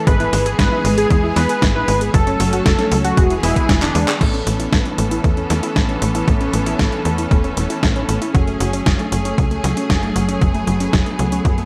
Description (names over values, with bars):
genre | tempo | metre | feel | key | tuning
italo disco | 116 BPM | 4/4 | straight | A major | A4 = 440 Hz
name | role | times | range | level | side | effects
rich studio string section | sustained chords | 0.0-11.7 s | E3 to A4 | -25 LUFS | equal | none
warbly dusty pluck | arpeggios | 0.0-11.7 s | F#3 to G#4 | -26 LUFS | equal | chorus, cassette tape, digital delay
unison lead | melody | 0.1-4.1 s | D4 to B4 | -22 LUFS | equal | digital delay
tight sequencer bass | bass | 0.1-11.7 s | E1 to F#2 | -23 LUFS | equal | none
clean 12-bit digital drum machine | drums | 0.1-11.7 s | crash cymbal, handclaps, hi-hat, snare drum | -26 LUFS | equal | overdrive, gated reverb
electronic kick drum | drums | 0.1-11.6 s | none | -19 LUFS | equal | overdrive
room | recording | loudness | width
light reverb, digital ambience | vinyl crackle | -17 LUFS | mono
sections
0.0-4.2 A section; 4.2-11.7 B section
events
drum fill 3.8-4.2; band accent 4.1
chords
0.1 E/G#; 2.1 F#m; 3.2 E; 4.2 Aadd9; 8.3 F#madd9